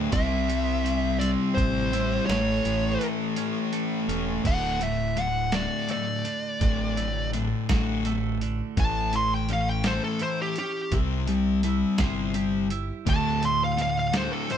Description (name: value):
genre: quiet-loud alternative rock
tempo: 56 BPM (dotted quarters)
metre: 6/8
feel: straight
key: D major from 4.5 s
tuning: A4 = 440 Hz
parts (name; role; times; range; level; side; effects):
- twelve-string electric guitar; arpeggios; 0.0-14.6 s; D2 to C5; -33 LUFS; right 7 dB; none
- fuzz guitar; riff; 0.0-4.4, 13.1-14.6 s; D2 to C4; -32 LUFS; right 8 dB; distortion
- thick fuzz guitar; riff; 0.0-14.6 s; D2 to C4; -28 LUFS; left 6 dB; distortion
- growling fingered electric bass; bass; 0.0-14.3 s; D1 to D2; -30 LUFS; right 1 dB; overdrive
- fuzz lead guitar; melody; 0.1-14.6 s; G4 to C6; -28 LUFS; equal; distortion
- lo-fi sampler-style drum kit; drums; 0.1-14.6 s; crash cymbal, hi-hat, kick drum, snare drum; -28 LUFS; right 1 dB; none
room: moderate stone room reverb, RT60 1.0 s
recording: band playing live in one room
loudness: -23 LUFS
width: side -9 dB against mid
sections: 0.0-4.5 A section; 4.5-14.6 B section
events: half time 0.0-4.5; lead electric guitar solo 4.5-14.6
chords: 0.1 C; 2.3 A; 4.5 D; 8.8 A; 10.9 C; 13.1 D